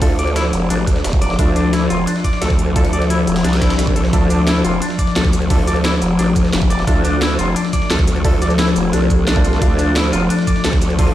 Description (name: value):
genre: dark technical drum and bass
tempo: 175 BPM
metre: 4/4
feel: straight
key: D minor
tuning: A4 = 440 Hz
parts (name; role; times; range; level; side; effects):
- deep dark ambient pad; sustained chords; 0.0-11.1 s; F3 to E5; -19 LUFS; left 2 dB; chorus, built-in reverb, sidechain pumping
- clean electric guitar; arpeggios; 0.0-11.1 s; D4 to D5; -23 LUFS; left 2 dB; sidechain pumping, digital delay
- orchestra-hit-like synth stab; stabs; 0.0-11.1 s; D4 to A4; -27 LUFS; right 2 dB; built-in reverb, digital delay
- growl bass; bass; 0.0-11.1 s; E1 to D2; -18 LUFS; equal; chorus, overdrive, sidechain pumping
- breakbeat sampler-style drum kit; drums; 0.0-11.1 s; hi-hat, ride cymbal, snare drum; -29 LUFS; right 1 dB; high-pass filter on cymbals, studio reverb, high-pass filter on snare, high-pass filter on hats, high-pass filter on room
- drum and bass drum kit; drums; 0.0-11.1 s; hi-hat, shaker, snare drum; -24 LUFS; equal; studio reverb
- electronic kick drum; drums; 0.0-11.1 s; none; -16 LUFS; right 1 dB; overdrive, studio reverb
- swell; sound effects; 3.6-4.1 s; none; -29 LUFS; right 1 dB; none
room: moderate lush hall reverb, RT60 2.1 s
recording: played on a big sound system in a bare room, stone room reverb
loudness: -13 LUFS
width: side -13 dB against mid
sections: 0.0-11.1 A section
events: swell 3.6-4.1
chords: 0.0 Dmadd9